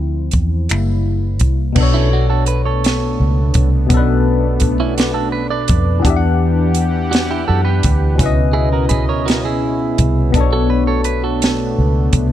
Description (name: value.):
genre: slow six-eight R&B.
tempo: 56 BPM (dotted quarters).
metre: 6/8.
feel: straight.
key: B minor.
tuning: A4 = 441 Hz.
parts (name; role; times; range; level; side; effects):
barky tine electric piano; accompaniment; 0.0-12.3 s; B2 to F#5; -19 LUFS; left 5 dB; phaser.
vintage muted fingered electric bass; bass; 0.0-12.3 s; F#1 to F#2; -17 LUFS; equal; none.
compact cocktail drum kit; drums; 0.3-12.3 s; crash cymbal, finger snaps, hi-hat, kick drum, snare drum; -17 LUFS; right 1 dB; vintage 12-bit sampler grit.
warm analog pad; sustained chords; 1.8-12.3 s; E3 to F#5; -24 LUFS; right 1 dB; chorus.
clean electric guitar; second line; 1.9-12.3 s; C#4 to D5; -22 LUFS; right 8 dB; none.
room: studio reverb.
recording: none.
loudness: -13 LUFS.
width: side -12 dB against mid.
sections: 0.0-1.8 A section; 1.8-12.3 B section.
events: tine electric piano solo 0.0-1.8.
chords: 0.0 Dm9; 0.7 F#7b9; 1.8 Bm9; 6.1 Em9; 8.2 C#m9; 10.3 Bm9.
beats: 0.69 | 1.76 2.84 | 3.91 4.98 | 6.05 7.12 | 8.19 9.27 | 10.34 11.41.